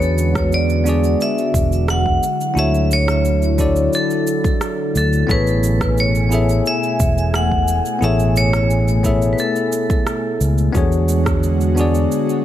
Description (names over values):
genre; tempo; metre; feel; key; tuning
sunset chillout; 88 BPM; 4/4; straight; A major; A4 = 440 Hz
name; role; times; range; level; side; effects
vibraphone with hard mallets; melody; 0.0-10.4 s; A4 to F#5; -21 LUFS; equal; digital delay
bell-like tine electric piano; accompaniment; 0.0-12.4 s; B3 to E5; -22 LUFS; moving between left 6 dB and right 4 dB; auto-pan, digital delay
airy breathy pad; sustained chords; 0.0-12.4 s; B2 to G#5; -24 LUFS; equal; chorus
fingered electric bass; bass; 0.0-12.1 s; E1 to E2; -17 LUFS; equal; tube saturation
electronic cabasa and rim click; drums; 0.0-12.4 s; none; -29 LUFS; right 3 dB; small room ambience
electronic kick drum; drums; 0.4-11.4 s; none; -21 LUFS; equal; small room ambience
room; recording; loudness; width
light reverb, digital ambience; none; -14 LUFS; side -12 dB against mid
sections
0.0-12.4 A section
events
none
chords
0.0 E13; 2.2 Dmaj9; 5.3 Amaj9; 10.8 E13